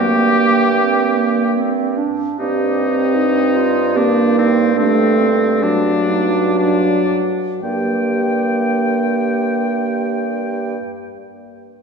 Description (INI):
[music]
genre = classical, slow romantic movement for wind quintet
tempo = 55-77 BPM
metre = 3/4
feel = rubato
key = G minor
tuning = A4 = 440 Hz
[part]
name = silver concert flute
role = melody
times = 0.0-1.6 s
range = G5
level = -26 LUFS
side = left 4 dB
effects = none
[part]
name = clear oboe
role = second line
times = 0.0-10.8 s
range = C4 to G5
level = -21 LUFS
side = left 1 dB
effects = none
[part]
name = dark French horn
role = accompaniment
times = 0.0-10.8 s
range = F#3 to C4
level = -18 LUFS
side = equal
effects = none
[part]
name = mellow clarinet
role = accompaniment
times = 0.0-10.8 s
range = Bb3 to G4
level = -21 LUFS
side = right 4 dB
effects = none
[part]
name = warm bassoon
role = bass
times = 0.0-10.8 s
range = G2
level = -21 LUFS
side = right 4 dB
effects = none
[sound]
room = wet church reverb, RT60 3.0 s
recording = recorded in a church or concert hall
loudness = -14 LUFS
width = side -5 dB against mid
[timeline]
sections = 0.0-2.4 A section; 2.4-7.6 B section; 7.6-10.8 C section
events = slowing down 1.2-7.6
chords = 0.0 Gm; 2.4 Cm/G; 4.8 D7/G; 7.6 Gm